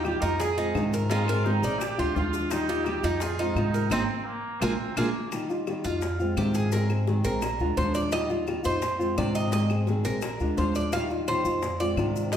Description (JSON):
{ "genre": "latin, Cuban son and guajira", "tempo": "171 BPM", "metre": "4/4", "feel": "straight", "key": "Eb major", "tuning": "A4 = 441 Hz", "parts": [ { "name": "bright trumpet", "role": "second line", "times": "0.0-5.3 s", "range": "Bb3 to Bb4", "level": "-33 LUFS", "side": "right 4 dB", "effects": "none" }, { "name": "nylon-string guitar", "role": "accompaniment", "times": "0.0-12.4 s", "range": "C3 to Ab4", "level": "-28 LUFS", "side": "left 1 dB", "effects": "none" }, { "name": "Cuban tres", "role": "arpeggios", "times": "0.0-12.4 s", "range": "C4 to F5", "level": "-30 LUFS", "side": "right 2 dB", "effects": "none" }, { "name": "upright bass", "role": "bass", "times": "0.0-12.4 s", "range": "Ab1 to Ab2", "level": "-30 LUFS", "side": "equal", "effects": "none" }, { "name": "bongos", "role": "percussion", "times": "0.0-12.4 s", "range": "none", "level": "-36 LUFS", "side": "left 4 dB", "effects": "none" }, { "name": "claves", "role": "percussion", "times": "0.0-12.2 s", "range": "none", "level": "-42 LUFS", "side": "left 4 dB", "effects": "none" }, { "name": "maracas", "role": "percussion", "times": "0.1-12.4 s", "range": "none", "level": "-45 LUFS", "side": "left 7 dB", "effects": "none" } ], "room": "wet large studio reverb, RT60 1.3 s", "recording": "heard from further back in the room", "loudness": "-24 LUFS", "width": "side -9 dB against mid", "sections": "0.0-5.3 A section; 5.3-12.4 B section", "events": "band accent 3.9-5.3; Cuban tres solo 5.3-12.4", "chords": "0.4 Fm7; 1.1 Abadd9; 1.8 Bb7; 2.5 Ebadd9; 3.2 Fm7; 3.9 Abadd9; 4.6 Bb7; 5.3 Ebadd9; 6.0 Fm7; 6.7 Abadd9; 7.4 Bb7; 8.1 Ebadd9; 8.8 Fm7; 9.5 Abadd9; 10.2 Bb7; 10.9 Ebadd9; 11.6 Fm7" }